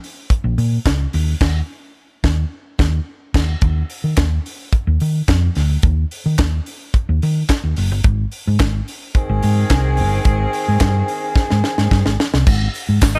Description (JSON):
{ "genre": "disco", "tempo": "108 BPM", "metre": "4/4", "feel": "straight", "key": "unclear", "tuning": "A4 = 439 Hz", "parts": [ { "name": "tight funk drum kit", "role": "drums", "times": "0.0-13.2 s", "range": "crash cymbal, handclaps, hi-hat, kick drum, snare drum", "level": "-20 LUFS", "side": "equal", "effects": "none" }, { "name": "hollow-body short-scale fingered electric bass", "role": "bass", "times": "0.4-13.2 s", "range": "Gb1 to Eb3", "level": "-19 LUFS", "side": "equal", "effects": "none" }, { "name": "warm horn section", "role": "stabs", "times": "9.2-13.2 s", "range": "Eb3 to Bb4", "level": "-24 LUFS", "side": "equal", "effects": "none" }, { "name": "tambourine", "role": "percussion", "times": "12.5-13.1 s", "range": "none", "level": "-37 LUFS", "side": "equal", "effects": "none" } ], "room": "little or no reverb", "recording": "none", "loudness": "-18 LUFS", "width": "mono", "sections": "0.0-3.6 A section; 3.6-12.5 B section", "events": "band accent 1.4-3.6; drum fill 11.4-12.5", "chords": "0.0 Bbm; 1.1 N.C.; 8.0 Ab; 12.5 N.C." }